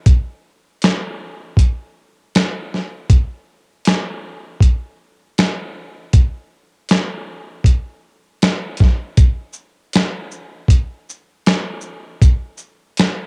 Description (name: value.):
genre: hip hop.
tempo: 79 BPM.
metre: 4/4.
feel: swing 61% on 16ths.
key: none.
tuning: none.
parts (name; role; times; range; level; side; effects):
dusty soul sampler-style drum kit; drums; 0.1-13.2 s; finger snaps, hi-hat, kick drum, shaker, snare drum; -16 LUFS; equal; none.
room: light reverb.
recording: home recording on cassette.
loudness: -18 LUFS.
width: mono.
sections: 0.0-9.2 A section; 9.2-13.3 B section.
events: none.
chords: none.